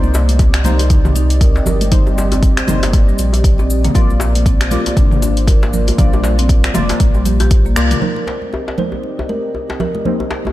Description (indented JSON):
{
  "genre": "afro house",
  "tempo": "118 BPM",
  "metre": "4/4",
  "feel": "swing 58% on 16ths",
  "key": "C minor",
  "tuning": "A4 = 439 Hz",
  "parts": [
    { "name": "dark analog pad", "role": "sustained chords", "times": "0.0-10.5 s", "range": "Bb3 to Eb5", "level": "-25 LUFS", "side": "equal", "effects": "chorus, sidechain pumping" },
    { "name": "deep mellow chord stab", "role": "stabs", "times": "0.0-10.5 s", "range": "Bb3 to D5", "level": "-24 LUFS", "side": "left 3 dB", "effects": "chorus, sidechain pumping, tape echo" },
    { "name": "warm sub bass", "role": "bass", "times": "0.0-7.9 s", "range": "F1 to C2", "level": "-16 LUFS", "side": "equal", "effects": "tube saturation, sidechain pumping" },
    { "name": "cabasa", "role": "percussion", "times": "0.0-8.0 s", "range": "none", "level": "-31 LUFS", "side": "left 3 dB", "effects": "none" },
    { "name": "congas", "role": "percussion", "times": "0.0-10.5 s", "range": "none", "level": "-24 LUFS", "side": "right 4 dB", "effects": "none" },
    { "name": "marimba with medium mallets", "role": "arpeggios", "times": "0.1-8.0 s", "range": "G3 to C5", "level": "-23 LUFS", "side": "equal", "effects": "vintage 12-bit sampler grit, sidechain pumping, tape echo" },
    { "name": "djembe", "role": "percussion", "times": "0.1-10.5 s", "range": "none", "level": "-26 LUFS", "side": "left 2 dB", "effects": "none" },
    { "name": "deep house drum kit", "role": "drums", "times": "0.3-8.0 s", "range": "finger snaps, hi-hat, toms", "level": "-22 LUFS", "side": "equal", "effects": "none" },
    { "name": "electronic kick drum", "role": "drums", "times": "0.4-7.6 s", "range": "none", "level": "-12 LUFS", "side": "equal", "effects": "none" },
    { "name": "kalimba", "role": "melody", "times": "7.8-10.5 s", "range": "G4 to D5", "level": "-24 LUFS", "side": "left 1 dB", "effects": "tape echo" }
  ],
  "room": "light reverb, studio reverb",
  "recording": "dark, warm production",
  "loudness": "-12 LUFS",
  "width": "side -15 dB against mid",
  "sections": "0.0-8.0 A section; 8.0-10.5 B section",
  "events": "band accent 7.8; filter sweep on synth stab 8.0-10.5",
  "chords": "0.0 Cm7; 4.0 Bb; 8.0 Cm7",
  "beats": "0.39 0.90 1.41 | 1.92 2.43 2.94 3.44 | 3.95 4.46 4.97 5.48 | 5.99 6.49 7.00 7.51 | 8.02 8.53 9.04 9.54 | 10.05"
}